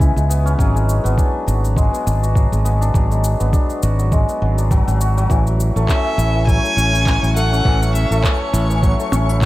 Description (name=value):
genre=folktronica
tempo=102 BPM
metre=4/4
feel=swing 56% on 16ths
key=F# minor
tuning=A4 = 442 Hz
part: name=hammered dulcimer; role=arpeggios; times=0.0-9.5 s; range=E3 to F#4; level=-21 LUFS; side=left 2 dB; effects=ping-pong delay
part: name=modern bright fingered electric bass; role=bass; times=0.0-9.5 s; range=G#1 to C#2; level=-16 LUFS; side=equal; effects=none
part: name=electronic kick drum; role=drums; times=0.0-9.5 s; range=none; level=-17 LUFS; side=equal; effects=small room ambience
part: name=electronic shaker, handclaps and percussion blips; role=drums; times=0.0-9.5 s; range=none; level=-28 LUFS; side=equal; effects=small room ambience
part: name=twinkling granular texture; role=texture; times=5.8-9.5 s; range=C#5 to C#6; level=-30 LUFS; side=left 1 dB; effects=built-in reverb
part: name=clear violin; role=melody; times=5.9-9.1 s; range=C#5 to G#5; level=-21 LUFS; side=right 1 dB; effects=ping-pong delay
room=little or no reverb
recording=none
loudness=-14 LUFS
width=side -17 dB against mid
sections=0.0-9.5 A section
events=none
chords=0.0 C#m7; 0.6 G#m7b5; 5.3 F#m7/A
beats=0.01 | 0.59 1.18 1.77 2.36 | 2.95 3.54 4.12 4.71 | 5.30 5.89 6.48 7.07 | 7.65 8.24 8.83 9.42